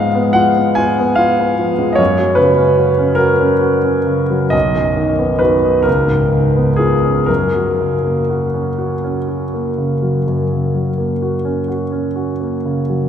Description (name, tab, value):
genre	classical, romantic nocturne for solo piano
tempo	39-51 BPM (dotted quarters)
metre	12/8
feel	rubato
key	F# major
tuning	A4 = 443 Hz
part	clear grand piano	solo	0.0-13.1 s	B1 to Ab5	-13 LUFS	equal	none
room	wet cathedral reverb, RT60 5.5 s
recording	recorded in a church or concert hall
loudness	-13 LUFS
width	side -8 dB against mid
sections	0.0-13.1 A section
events	none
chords	0.0 Fdim/Ab; 2.0 F#; 4.5 B; 5.9 C#7; 7.3 F#